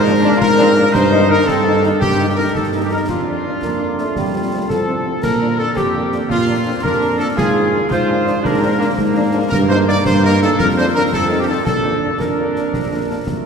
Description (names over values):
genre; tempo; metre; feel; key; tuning
military-style march for wind band; 112 BPM (dotted quarters); 6/8; straight; Bb major; A4 = 439 Hz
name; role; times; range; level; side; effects
mellow trumpet section; melody; 0.0-13.5 s; F4 to D5; -22 LUFS; equal; none
warm woodwind section; second line; 0.0-13.5 s; F4 to D5; -20 LUFS; left 1 dB; none
clear trombone section; sustained chords; 0.0-13.5 s; A3 to F4; -22 LUFS; right 3 dB; none
mellow tuba; bass; 0.0-13.5 s; Bb1 to Bb2; -18 LUFS; right 1 dB; none
mellow French horn section; accompaniment; 0.1-13.2 s; Eb3 to Eb4; -24 LUFS; left 3 dB; none
concert snare drum, concert bass drum and clash cymbals; drums; 0.4-13.4 s; none; -25 LUFS; left 1 dB; none
warm euphonium; second line; 3.6-5.2 s; F3 to Bb3; -26 LUFS; right 1 dB; none
room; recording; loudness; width
wet cathedral reverb, RT60 5.0 s; recorded in a church or concert hall; -13 LUFS; side -6 dB against mid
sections
0.0-13.5 A section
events
none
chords
0.0 Bb7/Ab; 0.9 Eb/G; 3.1 Bb/F; 4.2 F; 5.2 Bb; 7.4 Bb7/Ab; 9.5 Eb/G; 10.6 Bb/F; 11.1 F7; 11.7 Bb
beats
0.41 | 0.95 1.48 | 2.02 2.56 | 3.09 3.63 | 4.16 4.70 | 5.23 5.77 | 6.30 6.84 | 7.38 7.91 | 8.45 8.98 | 9.52 10.05 | 10.59 11.13 | 11.66 12.20 | 12.73 13.27